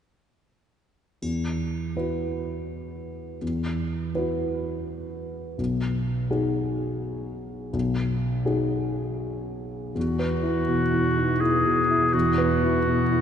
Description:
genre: cinematic, emotional film score for orchestra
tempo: 83 BPM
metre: 3/4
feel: rubato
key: E major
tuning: A4 = 441 Hz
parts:
  - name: dark baby grand piano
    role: accompaniment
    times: 1.2-13.2 s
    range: B1 to B4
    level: -25 LUFS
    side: equal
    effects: none
  - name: triangle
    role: percussion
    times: 1.2-2.6 s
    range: none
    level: -48 LUFS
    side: left 1 dB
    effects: none
  - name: clear clarinet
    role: second line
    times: 10.0-13.2 s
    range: F#4 to G#4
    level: -24 LUFS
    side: left 1 dB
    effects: none
  - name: rich symphonic cello section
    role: bass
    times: 10.0-13.2 s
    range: E2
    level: -30 LUFS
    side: right 4 dB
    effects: none
room: wet cathedral reverb, RT60 4.3 s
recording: nothing above 10.6 kHz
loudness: -23 LUFS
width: side -8 dB against mid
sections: 1.2-10.0 A section; 10.0-13.2 B section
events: none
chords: 1.2 Esus2; 5.6 B6; 10.0 Esus2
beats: | 1.22 1.96 2.69 | 3.42 4.14 4.86 | 5.58 6.30 7.02 | 7.74 8.46 9.20 | 9.96 10.69 11.41 | 12.14 12.86

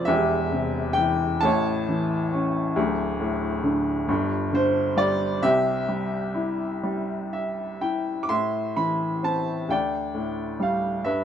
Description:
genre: classical, lyrical solo piano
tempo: 41-46 BPM (dotted quarters)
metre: 6/8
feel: rubato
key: C major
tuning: A4 = 436 Hz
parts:
  - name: clear upright piano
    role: solo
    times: 0.0-11.2 s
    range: D1 to D6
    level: -22 LUFS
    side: equal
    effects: none
room: light reverb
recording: none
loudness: -22 LUFS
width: side -9 dB against mid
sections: 0.0-8.3 A section; 8.3-11.2 B section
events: upright piano fill 6.9-8.3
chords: 0.1 C/E; 1.4 A; 2.8 D5; 4.1 G5; 5.4 C; 8.3 Am; 9.7 Dsus4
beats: | 0.09 1.44 | 2.76 4.08 | 5.44 6.85 | 8.30 9.71 | 11.06

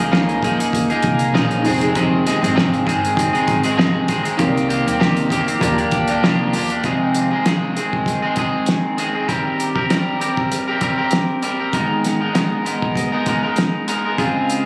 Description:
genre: indie pop, bedroom pop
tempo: 98 BPM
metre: 4/4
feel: swing 55% on 16ths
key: unclear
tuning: A4 = 441 Hz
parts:
  - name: electric guitar at the edge of break-up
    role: accompaniment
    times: 0.0-14.7 s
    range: F2 to Bb4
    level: -20 LUFS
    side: equal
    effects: subtle chorus, warbly pitch drift
  - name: mellow tine electric piano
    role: accompaniment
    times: 0.0-6.9 s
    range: Eb4 to D5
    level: -29 LUFS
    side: equal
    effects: cassette tape
  - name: upright bass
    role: bass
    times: 0.0-6.8 s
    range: F1 to Fb2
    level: -25 LUFS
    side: equal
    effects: none
  - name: cloth-damped thuddy drum kit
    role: drums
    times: 0.0-14.6 s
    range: hi-hat, kick drum, snare drum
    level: -24 LUFS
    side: equal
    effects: none
room: light reverb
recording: recorded on a phone in the room, club reverb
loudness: -18 LUFS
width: mono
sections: 0.0-6.8 A section; 6.8-14.7 B section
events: none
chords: 0.0 Db69; 1.6 Fm7; 4.4 Cm7; 5.6 Ebmaj9; 6.8 Fm7; 9.3 Eb6; 11.7 Abmadd9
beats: 0.12 0.73 1.34 | 1.95 2.56 3.17 3.79 | 4.40 5.01 5.62 6.23 | 6.84 7.45 8.06 8.68 | 9.29 9.90 10.51 11.12 | 11.73 12.35 12.96 13.57 | 14.18

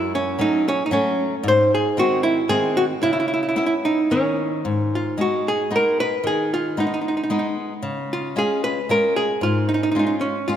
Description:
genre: italian folk, Italian serenade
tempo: 113 BPM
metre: 3/4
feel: straight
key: C# minor, G# dorian from 4.7 s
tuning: A4 = 440 Hz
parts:
  - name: archtop guitar, miked and amplified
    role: melody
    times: 0.0-10.5 s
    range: C#4 to B#4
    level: -20 LUFS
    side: right 1 dB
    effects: none
  - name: flamenco guitar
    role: accompaniment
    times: 0.0-10.6 s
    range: F#2 to E#4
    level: -24 LUFS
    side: left 2 dB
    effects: none
room: wet concert hall reverb, RT60 2.5 s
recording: none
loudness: -18 LUFS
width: side -10 dB against mid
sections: 0.0-4.7 A section; 4.7-10.6 B section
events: none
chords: 0.0 F#m; 1.5 G#; 3.0 C#m7; 4.1 N.C.; 4.7 G#m; 7.8 C#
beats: 0.40 0.93 | 1.46 1.99 2.52 | 3.04 3.58 4.11 | 4.65 5.19 5.72 | 6.25 6.78 7.31 | 7.84 8.37 8.89 | 9.42 9.95 10.49

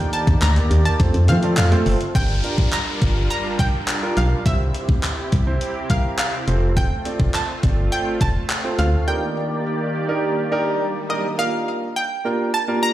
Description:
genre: dance-pop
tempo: 104 BPM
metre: 4/4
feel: straight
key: G minor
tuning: A4 = 441 Hz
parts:
  - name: analog pluck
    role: melody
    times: 0.0-12.9 s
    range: Eb5 to Bb5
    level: -26 LUFS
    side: right 1 dB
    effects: chorus, ping-pong delay
  - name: warm baby grand piano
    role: accompaniment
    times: 0.0-12.9 s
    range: A3 to D5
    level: -25 LUFS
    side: right 2 dB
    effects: sidechain pumping
  - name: filtered supersaw swell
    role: sustained chords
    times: 0.0-11.4 s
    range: C3 to D5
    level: -27 LUFS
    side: equal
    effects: sidechain pumping
  - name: gated 80s digital drum machine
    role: drums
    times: 0.1-8.9 s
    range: handclaps, hi-hat, kick drum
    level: -21 LUFS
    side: equal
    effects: gated reverb
  - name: organ-like FM bass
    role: bass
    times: 0.3-9.0 s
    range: F1 to F3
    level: -18 LUFS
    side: equal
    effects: sidechain pumping
  - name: downlifter and swell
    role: sound effects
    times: 2.2-11.4 s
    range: none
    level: -33 LUFS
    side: left 1 dB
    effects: none
room: light reverb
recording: played on a big sound system in a bare room, stone room reverb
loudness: -18 LUFS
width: side -13 dB against mid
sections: 0.0-2.2 A section; 2.2-11.4 B section; 11.4-12.9 A section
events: swell 10.3-11.4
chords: 0.0 Ebmaj7; 1.0 F; 2.2 Gm7; 4.5 C; 6.5 F; 9.1 Ebmaj7; 11.4 Gm7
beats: 0.42 1.00 1.57 | 2.15 2.73 3.31 3.88 | 4.46 5.04 5.61 6.19 | 6.77 7.34 7.92 8.50 | 9.07 9.65 10.23 10.81 | 11.38 11.96 12.54

